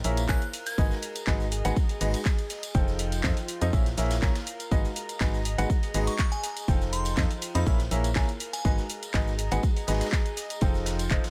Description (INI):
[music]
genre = piano house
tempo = 122 BPM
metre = 4/4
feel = swing 53% on 16ths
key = unclear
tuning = A4 = 440 Hz
[part]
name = bright grand piano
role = riff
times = 0.0-11.2 s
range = F3 to G#5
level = -35 LUFS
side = equal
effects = sidechain pumping, tape echo
[part]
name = organ-like FM bass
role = bass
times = 0.0-11.2 s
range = F1 to F2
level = -31 LUFS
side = equal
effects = sidechain pumping
[part]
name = house drum kit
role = drums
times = 0.0-11.3 s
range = handclaps, hi-hat, shaker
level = -37 LUFS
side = equal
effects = none
[part]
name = street-band drum kit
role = drums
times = 0.0-11.3 s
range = hi-hat, ride cymbal, snare drum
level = -47 LUFS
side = equal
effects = sidechain pumping on cymbals, high-pass filter on cymbals, sidechain pumping on hats, high-pass filter on hats, high-pass filter on snare, high-pass filter on room
[part]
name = warbly tape-like pad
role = texture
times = 0.0-11.3 s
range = F4 to A#5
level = -42 LUFS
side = equal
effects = chorus, built-in reverb, sidechain pumping
[part]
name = tambourine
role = percussion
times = 0.2-11.3 s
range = none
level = -47 LUFS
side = equal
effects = none
[part]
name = glassy synth bell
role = melody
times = 0.3-0.8, 6.1-8.7 s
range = G#5 to G#6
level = -38 LUFS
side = equal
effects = chorus, tape echo
[part]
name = electronic kick drum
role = drums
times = 0.3-11.2 s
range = none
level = -28 LUFS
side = equal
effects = none
[sound]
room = small room ambience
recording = none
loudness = -27 LUFS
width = mono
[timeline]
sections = 0.0-11.3 A section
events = none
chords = 0.0 A#m7b5; 0.8 G#m7; 2.7 F7; 3.7 A#m7b5; 4.7 G#m7; 6.7 F7; 7.7 A#m7b5; 8.7 G#m7; 10.6 F7